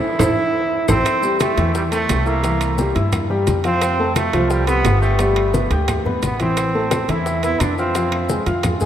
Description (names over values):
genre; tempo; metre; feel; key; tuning
latin, salsa; 174 BPM; 4/4; straight; unclear; A4 = 440 Hz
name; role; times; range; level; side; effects
brilliant trombone; melody; 0.0-8.4 s; G3 to E4; -21 LUFS; right 2 dB; none
warm grand piano; accompaniment; 0.2-8.9 s; C3 to G6; -21 LUFS; left 2 dB; none
upright bass; bass; 0.2-8.9 s; G1 to G2; -21 LUFS; equal; none
bongos; percussion; 0.2-8.9 s; none; -30 LUFS; left 5 dB; none
claves; percussion; 0.2-8.8 s; none; -36 LUFS; left 3 dB; none
congas; percussion; 0.2-8.9 s; none; -26 LUFS; left 1 dB; none
maracas; percussion; 0.2-8.9 s; none; -36 LUFS; left 5 dB; none
timbales; percussion; 0.2-8.8 s; none; -29 LUFS; right 6 dB; none
room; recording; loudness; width
wet cathedral reverb, RT60 5.5 s; in a vast, echoing space; -16 LUFS; side -10 dB against mid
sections
0.0-1.1 A section; 1.1-8.9 B section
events
drum fill 0.0-1.1; band accent 0.0-1.1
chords
0.0 Am; 1.1 Am7; 2.4 C7; 3.8 Fadd9; 5.2 Gadd9; 6.6 Amadd9; 7.9 Fm